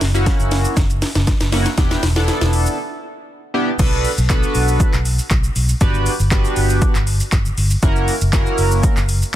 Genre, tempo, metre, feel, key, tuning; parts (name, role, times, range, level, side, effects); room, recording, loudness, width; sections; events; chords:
dance-pop; 119 BPM; 4/4; straight; B minor; A4 = 439 Hz
vintage muted fingered electric bass; bass; 0.0-9.2 s; E1 to B1; -18 LUFS; equal; sidechain pumping
house drum kit; drums; 0.0-9.3 s; crash cymbal, handclaps, hi-hat, kick drum, shaker, snare drum; -18 LUFS; equal; overdrive
chorused polysynth; accompaniment; 0.1-9.0 s; A#3 to B4; -21 LUFS; right 1 dB; sidechain pumping
digital ambience; dense, heavily limited modern master; -14 LUFS; side -13 dB against mid
0.0-3.8 A section; 3.8-9.4 B section
build-up 0.0-3.8; drum fill 0.0-2.8; break 2.8-3.8; drop 3.8-9.4
0.0 F#7; 1.8 Em7; 3.8 Bm7; 5.8 Gmaj7; 7.8 F#7